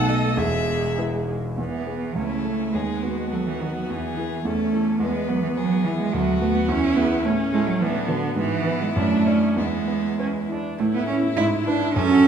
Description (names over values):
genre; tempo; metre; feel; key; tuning
quick classical-period movement for piano quartet; 97-109 BPM; 2/4; rubato; E major; A4 = 440 Hz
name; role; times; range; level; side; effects
rich violin; melody; 0.0-12.3 s; C#4 to F#5; -31 LUFS; left 7 dB; none
rich cello; second line; 0.0-12.3 s; D3 to E4; -23 LUFS; right 4 dB; none
clear concert grand piano; accompaniment; 0.0-12.3 s; E1 to D5; -26 LUFS; equal; none
rich viola; accompaniment; 0.0-12.3 s; B3 to A4; -29 LUFS; right 2 dB; none
room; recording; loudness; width
wet recital hall reverb, RT60 1.6 s; minimal, uncompressed stereo recording; -20 LUFS; side -8 dB against mid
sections
0.0-1.6 A section; 1.6-10.8 A section; 10.8-12.3 B section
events
none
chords
0.4 E; 2.2 A/C#; 2.7 B7/D#; 3.9 E; 4.4 A/E; 5.0 E; 6.1 Bm/D; 6.7 E; 7.3 A; 7.8 Bm7/A; 8.4 E/G#; 9.0 D/F#; 9.6 E; 10.8 A; 11.4 E/G#